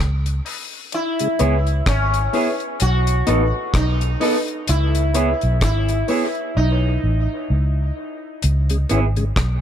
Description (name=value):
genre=dub reggae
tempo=64 BPM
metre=4/4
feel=swing 58% on 16ths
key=C# minor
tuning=A4 = 438 Hz
part: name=vintage muted fingered electric bass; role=bass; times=0.0-9.6 s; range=G#1 to C#2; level=-18 LUFS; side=equal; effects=none
part: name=deep reggae drum kit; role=drums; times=0.0-9.6 s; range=hi-hat, kick drum, rim click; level=-24 LUFS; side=equal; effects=none
part: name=tonewheel organ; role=accompaniment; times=0.3-1.3, 8.7-9.2 s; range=B2 to E4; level=-27 LUFS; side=left 2 dB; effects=chorus vibrato, slow rotary speaker, high-pass filter
part: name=dark upright piano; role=stabs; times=0.5-6.3 s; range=D#4 to C#5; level=-27 LUFS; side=left 5 dB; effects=high-pass filter, dub echo
part: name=sitar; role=melody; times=0.9-7.9 s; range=C#4 to F#4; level=-24 LUFS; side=equal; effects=dub echo
part: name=mellow electric guitar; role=accompaniment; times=1.4-9.0 s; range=B3 to A4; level=-25 LUFS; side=right 5 dB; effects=vibrato effect, high-pass filter, dub echo
room=light reverb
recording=none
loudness=-17 LUFS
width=side -9 dB against mid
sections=0.0-8.4 A section; 8.4-9.6 B section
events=break 0.0-0.9; drums muted 6.6-8.4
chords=0.0 B7; 0.9 C#m7; 2.8 B7; 4.7 C#m7; 6.6 B7; 8.4 C#m7